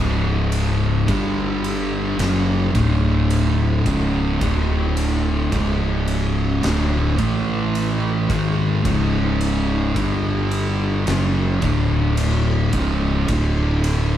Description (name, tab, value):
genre	stoner and doom metal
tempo	54 BPM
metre	4/4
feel	straight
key	unclear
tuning	A4 = 441 Hz
part	phased string machine	sustained chords	0.4-14.2 s	C#3 to D#5	-33 LUFS	equal	none
part	thick fuzz guitar	riff	0.0-14.2 s	C#2 to A3	-22 LUFS	left 4 dB	distortion
part	thick fuzz guitar	riff	0.0-14.2 s	C#2 to A3	-22 LUFS	right 4 dB	distortion
part	fuzz fingered electric bass	bass	0.0-14.2 s	C#1 to A1	-23 LUFS	equal	overdrive
part	big rock drum kit	drums	0.5-14.1 s	kick drum, ride cymbal, snare drum	-28 LUFS	equal	none
room	moderate studio reverb, RT60 0.6 s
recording	band playing live in one room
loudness	-17 LUFS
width	side -11 dB against mid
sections	0.0-14.2 A section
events	none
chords	0.0 C#5; 1.1 G5; 2.2 C#5; 2.7 D5; 3.9 C#5; 4.4 D5; 5.5 C#5; 7.2 A5; 8.3 C#5; 10.0 G5; 11.1 C#5; 11.6 D5; 12.7 C#5; 13.3 D5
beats	1.08 2.19 3.30 | 4.41 5.52 6.63 7.74 | 8.85 9.96 11.07 12.18 | 13.29